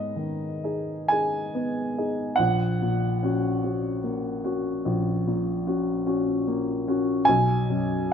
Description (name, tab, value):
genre	classical, romantic nocturne for solo piano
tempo	42-50 BPM (dotted quarters)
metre	12/8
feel	rubato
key	unclear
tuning	A4 = 440 Hz
part	warm baby grand piano	solo	0.0-8.1 s	A#1 to G#5	-23 LUFS	equal	none
room	light reverb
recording	none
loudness	-23 LUFS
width	side -7 dB against mid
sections	0.0-8.1 A section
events	none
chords	0.0 G#m; 2.4 F#/A#; 7.3 B5